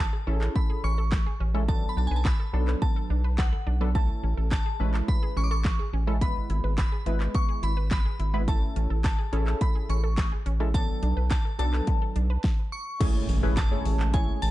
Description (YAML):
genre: dance-pop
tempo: 106 BPM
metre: 4/4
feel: straight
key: A major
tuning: A4 = 443 Hz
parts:
  - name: glassy synth bell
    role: melody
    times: 0.0-14.5 s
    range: F#5 to D6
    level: -35 LUFS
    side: equal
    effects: chorus, phaser
  - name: round analog bass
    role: bass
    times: 0.0-14.5 s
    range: G#1 to B1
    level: -25 LUFS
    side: equal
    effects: sidechain pumping
  - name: pop drum kit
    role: drums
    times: 0.0-14.5 s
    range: crash cymbal, handclaps, hi-hat, kick drum, snare drum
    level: -26 LUFS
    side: equal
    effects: none
  - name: wide unison pluck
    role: arpeggios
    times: 0.1-12.4 s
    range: A3 to B4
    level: -40 LUFS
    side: right 3 dB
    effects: sidechain pumping, digital delay
  - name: funky polysynth comp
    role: accompaniment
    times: 0.3-14.4 s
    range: F#3 to C#5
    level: -33 LUFS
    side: equal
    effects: chorus, sidechain pumping
  - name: pipe organ, flutes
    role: sustained chords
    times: 13.0-14.5 s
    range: G#3 to C#4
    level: -36 LUFS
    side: right 5 dB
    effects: sidechain pumping
  - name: impact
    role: sound effects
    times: 13.0-14.5 s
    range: none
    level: -33 LUFS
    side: equal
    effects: none
room: little or no reverb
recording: dark, warm production, nothing above 10.6 kHz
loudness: -24 LUFS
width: side -16 dB against mid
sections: 0.0-13.0 A section; 13.0-14.5 B section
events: stop 12.4-13.0; impact 13.0-14.5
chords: 0.0 Amaj7; 1.7 Bm7; 4.0 Amaj7; 6.2 E/G#; 8.5 Amaj7; 10.7 Bm7; 13.0 Amaj7